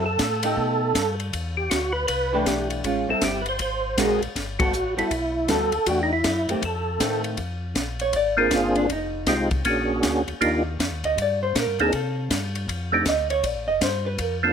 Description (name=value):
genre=soul jazz organ trio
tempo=159 BPM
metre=4/4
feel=swing 64% on 8ths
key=Bb mixolydian from 7.4 s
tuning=A4 = 440 Hz
part: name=percussive tonewheel organ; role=melody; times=0.0-14.5 s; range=Ab3 to C5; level=-23 LUFS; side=right 1 dB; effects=slow rotary speaker, chorus vibrato, plate reverb
part: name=vintage hollow-body jazz guitar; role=accompaniment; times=0.0-14.4 s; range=Eb3 to Eb5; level=-25 LUFS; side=right 1 dB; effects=none
part: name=mellow tonewheel organ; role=bass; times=0.0-14.5 s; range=F1 to C3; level=-30 LUFS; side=left 1 dB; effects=slow rotary speaker
part: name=compact cocktail drum kit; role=drums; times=0.2-14.3 s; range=hi-hat, kick drum, ride cymbal, snare drum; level=-28 LUFS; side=left 1 dB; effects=none
room=light reverb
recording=none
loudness=-21 LUFS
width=side -7 dB against mid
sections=0.0-7.4 A section; 7.4-14.5 B section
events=band accent 4.5; hollow-body jazz guitar solo 7.4-14.5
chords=0.0 F#m; 0.6 B7b13; 1.3 Em7; 2.8 Am7; 3.6 G#9; 4.4 Gmaj9; 5.9 Em11; 6.6 F7; 7.4 Bb7; 8.9 Fm7; 9.7 Bb7alt; 10.4 Ebmaj9; 11.9 C5; 12.7 F13; 13.4 Bbmaj9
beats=0.19 0.57 0.95 | 1.33 1.71 2.08 2.46 | 2.84 3.22 3.60 3.98 | 4.36 4.73 5.11 5.49 | 5.87 6.25 6.62 7.00 | 7.38 7.76 8.14 8.52 | 8.89 9.27 9.65 10.03 | 10.41 10.79 11.16 11.54 | 11.92 12.30 12.68 13.06 | 13.43 13.81 14.19